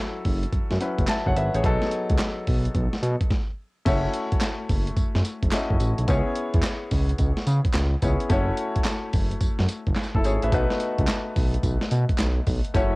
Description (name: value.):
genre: R&B, new jack swing.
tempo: 108 BPM.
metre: 4/4.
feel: swing 65% on 16ths.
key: F# dorian.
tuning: A4 = 440 Hz.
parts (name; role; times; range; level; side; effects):
bright concert grand piano; accompaniment; 0.0-13.0 s; F#3 to A5; -28 LUFS; left 2 dB; cassette tape.
dusty soul sampler-style drum kit; drums; 0.2-12.9 s; crash cymbal, handclaps, hi-hat, kick drum, snare drum, tambourine; -24 LUFS; equal; overdrive, cassette tape.
smooth synth bass; bass; 0.3-13.0 s; F#1 to C#3; -24 LUFS; equal; transformer saturation.
group handclap; percussion; 1.1-12.4 s; none; -35 LUFS; right 3 dB; none.
room: little or no reverb.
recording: home recording on cassette.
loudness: -21 LUFS.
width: side -23 dB against mid.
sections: 0.0-3.9 A section; 3.9-13.0 B section.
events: stop 3.3-3.9.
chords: 0.0 F#m7; 1.6 B7; 3.9 F#m7; 6.1 C#m7; 8.3 F#m7; 10.5 B7.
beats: 0.53 1.08 | 1.64 2.19 2.75 3.30 | 3.86 4.41 4.97 5.53 | 6.08 6.64 7.19 7.75 | 8.30 8.86 9.41 9.97 | 10.53 11.08 11.64 12.19 | 12.75.